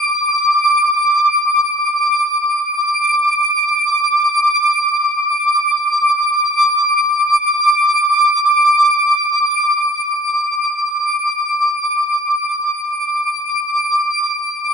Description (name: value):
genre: ambient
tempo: free time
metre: none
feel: none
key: unclear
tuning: A4 = 443 Hz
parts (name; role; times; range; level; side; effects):
- twinkling granular texture; solo; 0.0-14.7 s; D6; -13 LUFS; equal; built-in reverb, ping-pong delay
room: wet huge ambient reverb, RT60 7.4 s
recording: dark, warm production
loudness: -13 LUFS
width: side -5 dB against mid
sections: 0.0-11.5 A section; 11.5-14.7 B section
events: none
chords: none